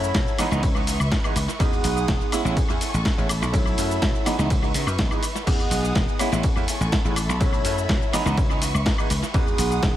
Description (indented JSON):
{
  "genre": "filtered disco house",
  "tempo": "124 BPM",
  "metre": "4/4",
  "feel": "straight",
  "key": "unclear",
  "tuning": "A4 = 438 Hz",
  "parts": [
    { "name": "bright baby grand piano", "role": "accompaniment", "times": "0.0-10.0 s", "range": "E3 to F#4", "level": "-27 LUFS", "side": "right 1 dB", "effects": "phaser, sidechain pumping, tape echo" },
    { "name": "rich studio violin section", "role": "sustained chords", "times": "0.0-10.0 s", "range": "G#4 to D#6", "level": "-32 LUFS", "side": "equal", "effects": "vintage 12-bit sampler grit, sidechain pumping" },
    { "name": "dry thumbed slap bass", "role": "bass", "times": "0.0-9.9 s", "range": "E1 to C#3", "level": "-26 LUFS", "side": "equal", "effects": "sidechain pumping" },
    { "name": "dusty soul sampler-style drum kit", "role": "drums", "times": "0.0-9.9 s", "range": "crash cymbal, hi-hat, ride cymbal, shaker, snare drum, woodblock", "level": "-27 LUFS", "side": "left 1 dB", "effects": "sidechain pumping on hats, sidechain pumping on perc, sidechain pumping on cymbals, tape echo" },
    { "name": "electronic kick drum", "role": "drums", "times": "0.1-9.9 s", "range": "none", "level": "-24 LUFS", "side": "equal", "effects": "none" }
  ],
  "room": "digital ambience",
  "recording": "echo-heavy mix",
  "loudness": "-20 LUFS",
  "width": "side -12 dB against mid",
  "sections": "0.0-10.0 A section",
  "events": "none",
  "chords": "0.4 C#m7; 1.6 Emaj9; 2.3 Amaj7; 3.3 B7sus4; 4.3 C#m7; 5.5 Emaj9; 6.2 Amaj7; 7.2 B7sus4; 8.1 C#m7; 9.3 Emaj9",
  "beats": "0.15 0.63 1.11 | 1.60 2.08 2.57 3.05 | 3.54 4.02 4.50 4.99 | 5.47 5.95 6.44 6.92 | 7.41 7.89 8.37 8.86 | 9.34 9.82"
}